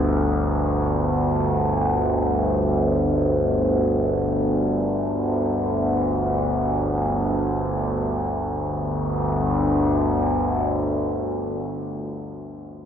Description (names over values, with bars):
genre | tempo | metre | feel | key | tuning
ambient | free time | none | none | unclear | A4 = 440 Hz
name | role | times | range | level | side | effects
overtone-sweeping drone | solo | 0.0-12.3 s | G1 to D2 | -20 LUFS | equal | chorus, built-in reverb
room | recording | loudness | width
wet cathedral reverb, RT60 5.2 s | worn, warbling old tape, cassette tape, warbly pitch drift | -20 LUFS | side -8 dB against mid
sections
0.0-7.9 A section; 7.9-12.0 B section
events
none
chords
0.0 G5